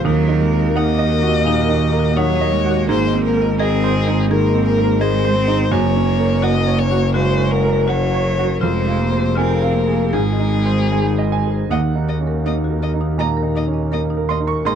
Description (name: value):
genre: neoclassical piano and strings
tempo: 75-86 BPM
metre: 4/4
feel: rubato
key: Eb dorian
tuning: A4 = 437 Hz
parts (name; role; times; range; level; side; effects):
- warm violin; melody; 0.0-14.7 s; Ab4 to Eb5; -22 LUFS; left 8 dB; none
- clear cello; second line; 0.0-14.7 s; Gb3 to C4; -23 LUFS; right 5 dB; none
- clear concert grand piano; accompaniment; 0.0-14.8 s; Eb2 to Db6; -21 LUFS; right 8 dB; none
- warbly tape-like pad; sustained chords; 0.0-14.8 s; Bb3 to Bb4; -28 LUFS; left 1 dB; chorus, built-in reverb
- rich double bass; bass; 0.0-14.8 s; F1 to Eb2; -19 LUFS; left 1 dB; none
- marimba with hard mallets; arpeggios; 0.1-14.8 s; Eb4 to Ab5; -27 LUFS; left 10 dB; slapback echo
room: studio reverb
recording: dry, close 1970s-style studio recording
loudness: -15 LUFS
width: side -8 dB against mid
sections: 0.0-11.7 A section; 11.7-14.8 B section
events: none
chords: 0.1 Ebm; 2.9 Abadd9; 5.7 Gb; 8.6 Fm; 10.1 Ab; 11.7 Ebm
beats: | 0.06 0.76 1.46 2.17 | 2.89 3.59 4.30 5.01 | 5.71 6.43 7.15 7.88 | 8.62 9.37 10.14 10.93 | 11.71 12.46 13.20 13.92 | 14.66